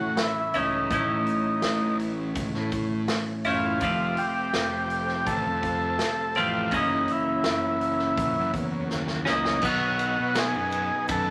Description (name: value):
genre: psychedelic rock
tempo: 82 BPM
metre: 4/4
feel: straight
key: unclear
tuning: A4 = 439 Hz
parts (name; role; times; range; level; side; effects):
- overdriven combo organ; melody; 0.0-11.3 s; D#4 to A4; -29 LUFS; equal; none
- soft string machine; sustained chords; 0.0-11.3 s; A3 to B5; -41 LUFS; equal; none
- twelve-string electric guitar; riff; 0.0-11.3 s; F2 to E4; -31 LUFS; equal; none
- fuzz picked electric bass; bass; 0.0-11.3 s; F1 to B2; -35 LUFS; equal; overdrive
- vintage drum kit; drums; 0.2-11.3 s; crash cymbal, hi-hat, kick drum, ride cymbal, snare drum; -34 LUFS; equal; none
- tube shaker; percussion; 0.2-11.3 s; none; -57 LUFS; equal; none
room: moderate large studio reverb, RT60 1.1 s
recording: none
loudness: -26 LUFS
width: mono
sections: 0.0-9.6 A section; 9.6-11.3 B section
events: drum fill 8.9-9.6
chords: 0.0 A; 3.8 F; 6.7 F#7; 9.6 B